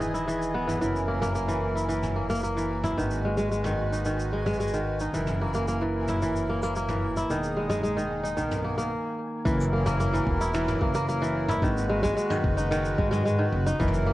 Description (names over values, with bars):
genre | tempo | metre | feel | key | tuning
folktronica | 111 BPM | 4/4 | straight | F# mixolydian | A4 = 438 Hz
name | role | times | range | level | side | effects
accordion | sustained chords | 0.0-14.1 s | D#3 to D#5 | -34 LUFS | right 1 dB | light tremolo tuning, cassette tape
kora | arpeggios | 0.0-14.1 s | D#3 to E4 | -27 LUFS | equal | low-pass filter, cassette tape, tape echo
upright bass | bass | 0.0-14.1 s | E1 to G#2 | -30 LUFS | equal | none
soft brush drum kit | drums | 0.0-14.0 s | finger snaps, shaker, toms | -36 LUFS | equal | cassette tape
backwards swelling texture | texture | 0.0-8.9 s | G#5 | -42 LUFS | equal | none
electronic kick drum | drums | 9.5-13.9 s | none | -29 LUFS | equal | overdrive, cassette tape
room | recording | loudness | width
light reverb, small room ambience | home recording on cassette | -24 LUFS | side -16 dB against mid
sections
0.0-9.5 A section; 9.5-14.1 B section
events
stop 8.9-9.5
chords
0.0 Emaj7; 0.8 F#7; 3.0 G#m7; 5.1 F#7; 7.3 Emaj7; 8.4 Bmaj7; 9.5 F#7; 11.6 G#m7